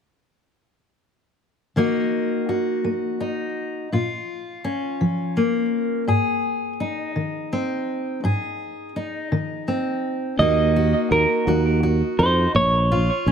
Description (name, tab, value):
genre	indie folk with a building arrangement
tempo	56 BPM (dotted quarters)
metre	6/8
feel	straight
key	unclear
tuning	A4 = 438 Hz
part	fingerpicked steel-string acoustic guitar	accompaniment	1.8-13.3 s	Ab2 to Ab4	-22 LUFS	left 1 dB	none
part	semi-hollow electric guitar	melody	10.4-13.3 s	Bb4 to Eb5	-20 LUFS	right 2 dB	harmonic tremolo, analog delay
part	fingered electric bass	bass	10.4-13.3 s	Bb1 to F2	-20 LUFS	right 1 dB	none
room	light reverb, studio reverb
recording	none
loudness	-20 LUFS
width	side -7 dB against mid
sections	1.8-10.4 A section; 10.4-13.3 B section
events	none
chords	1.8 Ebm; 3.9 Bbm; 6.1 Ab; 10.4 Ebm; 12.6 Bbm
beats	| 1.76 2.84 | 3.92 5.00 | 6.08 7.16 | 8.24 9.31 | 10.39 11.47 | 12.55